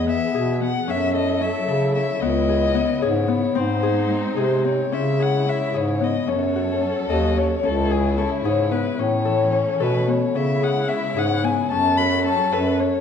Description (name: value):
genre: contemporary instrumental, chamber music in an uneven meter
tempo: 222 BPM (eighths)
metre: 5/8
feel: straight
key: C# minor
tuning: A4 = 440 Hz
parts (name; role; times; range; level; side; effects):
- dark violin; melody; 0.0-13.0 s; G#4 to B5; -24 LUFS; left 5 dB; none
- dark chamber string section; sustained chords; 0.0-13.0 s; C#3 to A4; -30 LUFS; right 2 dB; none
- Celtic harp; arpeggios; 0.0-13.0 s; B3 to A4; -24 LUFS; left 7 dB; none
- mellow bass clarinet; bass; 0.0-12.9 s; C#2 to C#3; -22 LUFS; right 1 dB; none
room: moderate concert hall reverb, RT60 1.7 s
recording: dark, warm production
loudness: -18 LUFS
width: side -7 dB against mid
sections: 0.0-4.9 A section; 4.9-13.0 B section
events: none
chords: 0.0 E; 0.9 F#m7; 2.2 C#m7; 3.6 G#; 4.9 C#m; 6.3 F#m; 7.6 C#m; 9.0 A; 10.3 C#m; 11.7 F#m